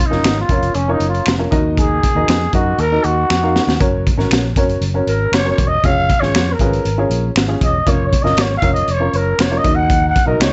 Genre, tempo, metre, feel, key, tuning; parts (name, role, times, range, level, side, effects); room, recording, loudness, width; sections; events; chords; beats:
uptempo 1960s-style soul; 118 BPM; 4/4; straight; F# major; A4 = 439 Hz
growling trumpet; melody; 0.0-10.5 s; C#4 to F#5; -20 LUFS; equal
warm upright piano; accompaniment; 0.1-10.5 s; D#3 to E#5; -23 LUFS; equal
fingered electric bass; bass; 0.1-10.5 s; E1 to F#2; -22 LUFS; equal
crunchy breakbeat drum kit; drums; 0.1-10.5 s; hi-hat, kick drum, snare drum; -20 LUFS; equal
finger snaps; percussion; 0.2-10.5 s; -24 LUFS; equal
light reverb; nothing above 8.0 kHz; -16 LUFS; mono
0.0-10.5 A section
trumpet solo 0.0-10.5; drum fill 3.3-3.8
0.0 A#m; 1.5 D#m; 3.8 F#; 5.8 C#/E#; 7.9 A#m/E#; 9.6 D#m
0.25 0.76 1.26 | 1.77 2.28 2.79 3.30 | 3.81 4.32 4.83 5.33 | 5.84 6.35 6.86 7.36 | 7.87 8.38 8.89 9.39 | 9.90 10.40